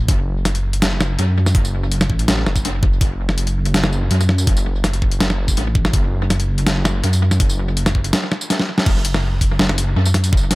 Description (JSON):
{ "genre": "half-time drum and bass", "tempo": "164 BPM", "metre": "4/4", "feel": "half-time", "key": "F# minor", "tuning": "A4 = 440 Hz", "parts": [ { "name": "dark detuned saw bass", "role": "bass", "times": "0.0-10.6 s", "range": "F#1 to F#2", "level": "-18 LUFS", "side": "equal", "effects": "none" }, { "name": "boom bap sampler-style drum kit", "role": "drums", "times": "0.1-10.6 s", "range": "crash cymbal, hi-hat, snare drum, tambourine", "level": "-20 LUFS", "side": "equal", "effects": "dub echo" }, { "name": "electronic kick drum", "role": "drums", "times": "0.1-10.4 s", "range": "none", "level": "-17 LUFS", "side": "equal", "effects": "none" } ], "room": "light reverb", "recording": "echo-heavy mix", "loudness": "-15 LUFS", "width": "side -21 dB against mid", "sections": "0.0-8.9 A section; 8.9-10.6 A section", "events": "drop 0.0-8.9, 8.9-10.6; drum fill 8.5-8.9", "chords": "none" }